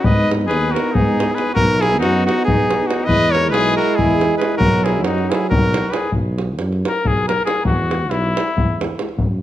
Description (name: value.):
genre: balkan folk, Balkan brass band.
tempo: 276 BPM (eighths).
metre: 7/8.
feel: straight.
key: B major.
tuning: A4 = 440 Hz.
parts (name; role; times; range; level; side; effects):
clear cornet; melody; 0.0-6.1 s; F#4 to D#5; -19 LUFS; equal; none.
warm trumpet; second line; 0.0-8.8 s; D#4 to B4; -22 LUFS; left 4 dB; none.
mellow euphonium; accompaniment; 0.0-9.1 s; F#3 to B3; -24 LUFS; right 5 dB; none.
warm euphonium; accompaniment; 0.0-9.1 s; D#4 to E4; -26 LUFS; left 6 dB; none.
mellow tuba; bass; 0.0-9.4 s; B1 to G#2; -22 LUFS; equal; none.
davul; percussion; 0.0-9.3 s; none; -20 LUFS; equal; none.
room: moderate recital hall reverb, RT60 1.4 s.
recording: none.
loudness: -15 LUFS.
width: side -13 dB against mid.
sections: 0.0-6.1 A section; 6.1-9.4 B section.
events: trumpet solo 6.1-9.4.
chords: 0.0 G#m; 1.6 B; 3.1 E; 4.6 B; 7.6 E.